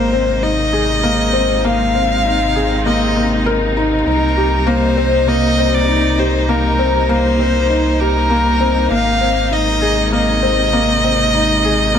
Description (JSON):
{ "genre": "piano and strings electronica", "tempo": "99 BPM", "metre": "4/4", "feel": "straight", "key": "unclear", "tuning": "A4 = 441 Hz", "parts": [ { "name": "warm violin", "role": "melody", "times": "0.0-12.0 s", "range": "Bb4 to F5", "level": "-18 LUFS", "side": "equal", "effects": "none" }, { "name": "warm symphonic string section", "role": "sustained chords", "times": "0.0-12.0 s", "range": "C3 to Eb4", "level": "-21 LUFS", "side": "equal", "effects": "none" }, { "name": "felt-muted upright piano", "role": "riff", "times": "0.0-12.0 s", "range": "Bb3 to Bb4", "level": "-17 LUFS", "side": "left 2 dB", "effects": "none" }, { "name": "warm sub bass", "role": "bass", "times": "0.0-12.0 s", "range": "Ab1 to C2", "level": "-20 LUFS", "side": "equal", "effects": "tube saturation" } ], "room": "light reverb, small room ambience", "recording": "none", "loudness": "-12 LUFS", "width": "side -8 dB against mid", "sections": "0.0-12.0 A section", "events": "none", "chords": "0.0 Abadd9; 4.1 Cm7; 8.9 Abadd9" }